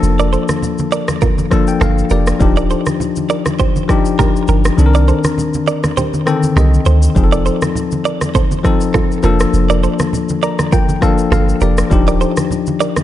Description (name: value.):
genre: afrobeats.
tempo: 101 BPM.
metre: 4/4.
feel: swing 55% on 16ths.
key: Bb major.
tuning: A4 = 440 Hz.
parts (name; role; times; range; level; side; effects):
bell-like tine electric piano; accompaniment; 0.0-13.0 s; D3 to Bb5; -16 LUFS; left 6 dB; none.
punchy sub bass; bass; 0.0-12.2 s; Eb1 to D2; -13 LUFS; right 1 dB; none.
afro-pop drum kit; drums; 0.0-13.0 s; kick drum, rim click, shaker; -18 LUFS; right 1 dB; none.
direct-recorded clean electric guitar; riff; 0.2-12.9 s; F4 to D5; -21 LUFS; right 8 dB; digital delay.
congas; percussion; 0.5-13.0 s; none; -21 LUFS; right 2 dB; none.
room: light reverb, digital ambience.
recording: dark, warm production, nothing above 11.0 kHz.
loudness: -12 LUFS.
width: side -12 dB against mid.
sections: 0.0-13.0 A section.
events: tine electric piano fill 1.2-2.4, 6.0-7.2, 10.1-11.9; kick muted 6.0-7.2.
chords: 0.0 Bbmaj7/F; 2.4 Ebmaj9; 4.8 Cm9; 7.2 F7; 9.2 Bbmaj7/F; 11.9 Ebmaj9.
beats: | 0.03 0.62 1.22 1.81 | 2.41 3.00 3.60 4.19 | 4.78 5.38 5.97 6.57 | 7.16 7.75 8.35 8.94 | 9.54 10.13 10.72 11.32 | 11.91 12.51.